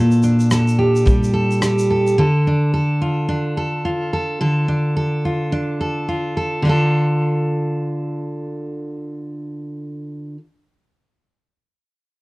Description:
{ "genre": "acoustic pop", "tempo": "108 BPM", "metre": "4/4", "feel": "swing 60% on 16ths", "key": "D minor", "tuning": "A4 = 442 Hz", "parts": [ { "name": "picked steel-string acoustic guitar", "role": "accompaniment", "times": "0.0-10.4 s", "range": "Bb2 to A4", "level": "-17 LUFS", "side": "equal", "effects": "none" }, { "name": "natural country drum kit", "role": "drums", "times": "0.1-2.2 s", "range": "kick drum, rim click, shaker", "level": "-20 LUFS", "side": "equal", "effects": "none" } ], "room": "moderate studio reverb, RT60 0.6 s", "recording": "worn, warbling old tape, cassette tape, warbly pitch drift", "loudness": "-16 LUFS", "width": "side -22 dB against mid", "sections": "0.0-6.6 A section; 6.6-8.9 B section", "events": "none", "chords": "0.0 Gmadd9/Bb; 2.2 Dm" }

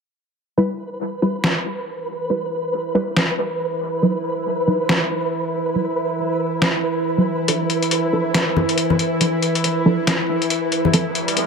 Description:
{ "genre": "deep dubstep", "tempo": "139 BPM", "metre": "4/4", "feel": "swing 60% on 16ths, half-time", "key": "unclear", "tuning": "A4 = 440 Hz", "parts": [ { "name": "bowed-like drone", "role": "sustained chords", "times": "2.1-11.5 s", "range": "E3 to E4", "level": "-23 LUFS", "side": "right 1 dB", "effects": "built-in reverb, vintage 12-bit sampler grit" }, { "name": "filtered dub chord stab", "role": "stabs", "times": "0.6-11.0 s", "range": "F3 to B4", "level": "-21 LUFS", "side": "right 1 dB", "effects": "chorus, cassette tape, dub echo" }, { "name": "flickering grainy texture", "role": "texture", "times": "0.9-11.5 s", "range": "B4", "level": "-24 LUFS", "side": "equal", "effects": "built-in reverb" }, { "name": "trip hop sampler-style drum kit", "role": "drums", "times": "1.4-11.5 s", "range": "hi-hat, snare drum", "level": "-20 LUFS", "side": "left 1 dB", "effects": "none" }, { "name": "congas", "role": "percussion", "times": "8.6-10.9 s", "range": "none", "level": "-22 LUFS", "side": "left 4 dB", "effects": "none" }, { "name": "riser", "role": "sound effects", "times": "11.1-11.5 s", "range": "none", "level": "-26 LUFS", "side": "right 1 dB", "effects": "none" } ], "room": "wet spring reverb, RT60 2.0 s", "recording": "none", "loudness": "-18 LUFS", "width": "side -5 dB against mid", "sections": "0.6-11.5 A section", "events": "filter sweep on synth drone 0.6-11.5; riser 11.1-11.5", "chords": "0.6 Em; 4.0 B; 7.5 Dm; 10.9 F" }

